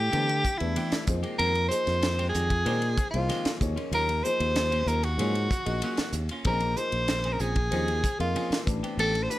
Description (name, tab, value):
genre	electric jazz fusion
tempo	95 BPM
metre	4/4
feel	straight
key	Bb minor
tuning	A4 = 440 Hz
part	bright soprano saxophone	melody	0.0-9.4 s	E4 to C5	-28 LUFS	equal	none
part	fingered electric bass	bass	0.0-9.3 s	A1 to D3	-29 LUFS	equal	none
part	dark grand piano	accompaniment	0.1-9.4 s	E3 to Eb5	-35 LUFS	left 3 dB	none
part	clean electric guitar	stabs	0.1-9.3 s	Eb3 to Ab4	-35 LUFS	right 2 dB	lush chorus
part	crisp fusion drum kit	drums	0.1-9.4 s	hi-hat, kick drum, ride cymbal, snare drum	-32 LUFS	equal	none
room	light reverb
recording	none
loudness	-24 LUFS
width	side -15 dB against mid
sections	0.0-9.4 A section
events	none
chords	0.0 Am9; 1.1 Fm9; 3.6 Ebm9; 6.5 Bbm9; 8.7 Am9